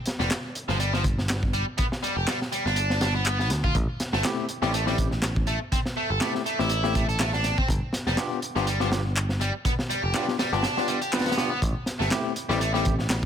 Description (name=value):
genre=breakbeat, breaks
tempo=122 BPM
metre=4/4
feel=swing 55% on 16ths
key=unclear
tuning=A4 = 440 Hz
part: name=crunchy breakbeat drum kit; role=drums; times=0.1-13.3 s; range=hi-hat, kick drum, snare drum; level=-28 LUFS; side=equal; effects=none
part: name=overdriven electric guitar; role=riff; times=0.2-12.8 s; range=F3 to A4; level=-29 LUFS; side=right 1 dB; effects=digital delay
part: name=picked electric bass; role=bass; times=0.2-13.3 s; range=F1 to D2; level=-27 LUFS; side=equal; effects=tube saturation
part: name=electronic handclaps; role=drums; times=0.3-13.2 s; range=none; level=-32 LUFS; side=equal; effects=overdrive
part: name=bell-like tine electric piano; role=stabs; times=4.2-12.9 s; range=A3 to B4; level=-29 LUFS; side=left 3 dB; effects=medium stereo tremolo, vintage 12-bit sampler grit, low-pass filter, digital delay
room=little or no reverb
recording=none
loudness=-23 LUFS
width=side -9 dB against mid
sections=0.0-13.3 A section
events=kick drops out 10.6-11.6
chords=0.0 G7(no3); 3.8 Am7; 7.7 G7; 11.6 Am7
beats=0.31 0.80 1.29 | 1.79 2.28 2.77 3.26 | 3.75 4.25 4.74 5.23 | 5.72 6.21 6.70 7.20 | 7.69 8.18 8.67 9.16 | 9.65 10.15 10.64 11.13 | 11.62 12.11 12.61 13.10